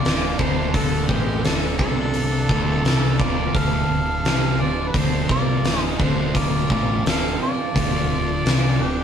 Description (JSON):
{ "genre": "blues rock power trio and southern rock", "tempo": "86 BPM", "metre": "4/4", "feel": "straight", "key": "D minor", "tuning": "A4 = 438 Hz", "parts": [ { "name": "mellow harmonica", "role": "melody", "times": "0.0-9.0 s", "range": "G4 to F5", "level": "-27 LUFS", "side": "equal", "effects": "overdrive" }, { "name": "smooth overdriven lead guitar", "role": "second line", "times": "0.0-9.0 s", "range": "G#3 to A4", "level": "-31 LUFS", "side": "right 5 dB", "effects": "analog delay" }, { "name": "overdriven tonewheel organ", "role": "sustained chords", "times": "0.0-9.0 s", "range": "D3 to F4", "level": "-37 LUFS", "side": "right 4 dB", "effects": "none" }, { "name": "fuzz guitar", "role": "riff", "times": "0.0-9.0 s", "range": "D2 to C3", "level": "-24 LUFS", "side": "left 2 dB", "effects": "distortion" }, { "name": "fuzz fingered electric bass", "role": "bass", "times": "0.0-9.0 s", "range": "D1 to C2", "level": "-27 LUFS", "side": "right 1 dB", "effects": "overdrive" }, { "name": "huge arena drum kit", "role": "drums", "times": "0.1-8.6 s", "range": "hi-hat, kick drum, snare drum", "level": "-22 LUFS", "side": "equal", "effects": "none" } ], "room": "moderate stone room reverb, RT60 1.2 s", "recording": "band playing live in one room", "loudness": "-18 LUFS", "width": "side -8 dB against mid", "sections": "0.0-9.0 A section", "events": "none", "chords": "0.0 Dm" }